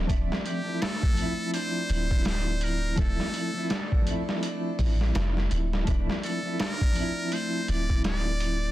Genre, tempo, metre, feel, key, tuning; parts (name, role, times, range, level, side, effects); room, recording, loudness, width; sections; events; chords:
trip hop; 83 BPM; 4/4; swing 60% on 16ths; D minor; A4 = 440 Hz
mellow electric guitar; accompaniment; 0.0-8.7 s; F3 to E5; -32 LUFS; equal; tremolo
Celtic harp; arpeggios; 0.0-8.7 s; A3 to F4; -37 LUFS; left 2 dB; tape echo
soft 808-style bass; bass; 0.0-8.7 s; D1 to A1; -28 LUFS; equal
trip hop sampler-style drum kit; drums; 0.1-8.6 s; hi-hat, kick drum, snare drum; -28 LUFS; equal
trumpet with metal mute; melody; 0.5-8.7 s; G4 to D5; -34 LUFS; equal; tape echo
digital ambience; dense, heavily limited modern master; -25 LUFS; side -15 dB against mid
0.0-8.7 A section
0.0 Dm7